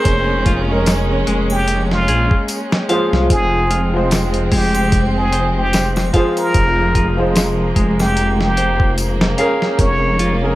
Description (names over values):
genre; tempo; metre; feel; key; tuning
trip hop; 74 BPM; 4/4; swing 56% on 16ths; unclear; A4 = 439 Hz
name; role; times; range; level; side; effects
trumpet with plunger mute; melody; 0.0-10.4 s; F4 to Db5; -21 LUFS; equal; vintage 12-bit sampler grit, tape echo
clear upright piano; accompaniment; 0.0-10.6 s; F3 to C5; -21 LUFS; equal; tremolo, tape echo
rich chamber string section; sustained chords; 0.0-10.6 s; F3 to Db4; -24 LUFS; right 1 dB; none
clean electric guitar; arpeggios; 0.0-10.4 s; Ab3 to F5; -24 LUFS; left 1 dB; tape echo
dark detuned saw bass; bass; 0.1-10.6 s; F1 to C2; -19 LUFS; equal; none
dusty soul sampler-style drum kit; drums; 0.1-10.4 s; hi-hat, kick drum, snare drum; -17 LUFS; equal; none
tambourine and triangle; percussion; 0.9-9.2 s; none; -32 LUFS; left 1 dB; none
room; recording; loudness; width
light reverb; vinyl crackle; -13 LUFS; side -16 dB against mid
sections
0.0-10.6 A section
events
none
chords
0.0 Bbm7/F